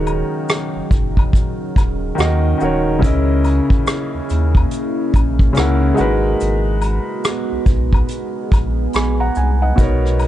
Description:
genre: lo-fi hip hop.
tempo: 71 BPM.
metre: 4/4.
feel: swing 62% on 16ths.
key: unclear.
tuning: A4 = 440 Hz.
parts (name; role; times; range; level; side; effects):
felt-muted upright piano; accompaniment; 0.0-10.3 s; B2 to B5; -20 LUFS; equal; cassette tape, low-pass filter.
deep dark ambient pad; sustained chords; 0.0-10.3 s; C#3 to G#4; -25 LUFS; right 2 dB; chorus, built-in reverb, low-pass filter.
saturated sub bass; bass; 0.0-10.3 s; D#1 to D#2; -18 LUFS; equal; none.
maracas and woodblock; percussion; 0.1-10.3 s; none; -30 LUFS; left 5 dB; none.
vintage brush drum kit; drums; 0.5-10.3 s; hi-hat, kick drum, rim click; -16 LUFS; equal; none.
room: light reverb, small room ambience.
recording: dark, warm production, nothing above 10.4 kHz.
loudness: -14 LUFS.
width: side -13 dB against mid.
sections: 0.0-10.3 A section.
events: break 0.0-3.0.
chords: 0.0 D#m7; 3.0 C#m69; 6.0 G#m9.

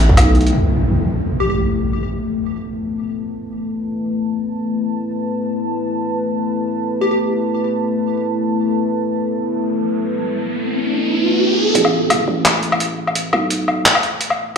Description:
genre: half-time drum and bass.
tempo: free time.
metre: none.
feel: none.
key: unclear.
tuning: A4 = 442 Hz.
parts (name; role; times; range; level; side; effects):
deep dark ambient pad; sustained chords; 0.0-14.6 s; A3 to A5; -20 LUFS; left 1 dB; chorus, built-in reverb, sidechain pumping.
growling 808-style bass; bass; 0.0-0.5, 11.8-13.8 s; A1 to B1; -17 LUFS; equal; high-pass filter.
boom bap sampler-style drum kit; drums; 0.0-0.5, 11.8-14.4 s; handclaps, hi-hat, woodblock; -16 LUFS; left 1 dB; low-pass filter on hats, small room ambience, low-pass filter on perc, low-pass filter on snare.
impact and riser; sound effects; 0.5-1.9, 10.1-11.8 s; none; -19 LUFS; right 1 dB; none.
plucky unison lead; melody; 1.4-1.5, 7.0-7.2 s; G4; -22 LUFS; left 2 dB; phaser, lush chorus, ping-pong delay.
room: wet echo chamber reverb, RT60 1.8 s, digital ambience.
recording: played on a big sound system in a bare room, large studio reverb.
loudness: -16 LUFS.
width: side -6 dB against mid.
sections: 0.5-11.8 A section; 11.8-14.6 B section.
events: impact 0.5-1.9; filter sweep on drum 0.5-11.8; riser 10.1-11.8; build-up 11.8-14.6; filter sweep on ambient pad 11.8-14.6.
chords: 0.0 A5.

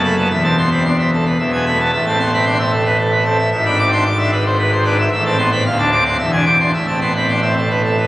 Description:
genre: classical, organ toccata.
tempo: 112 BPM.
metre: 3/4.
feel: straight.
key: A minor.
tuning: A4 = 440 Hz.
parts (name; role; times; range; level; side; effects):
pipe organ, full organ; solo; 0.0-8.1 s; D1 to D6; -13 LUFS; equal; none.
room: wet cathedral reverb, RT60 5.5 s.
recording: recorded on a phone in the room, studio reverb, compression.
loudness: -13 LUFS.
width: side -16 dB against mid.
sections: 0.0-8.1 A section.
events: none.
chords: 0.3 Am/E; 1.4 E; 1.9 Am; 3.5 E7/G#; 5.1 Am; 5.6 Dm; 6.2 E7; 6.7 Am.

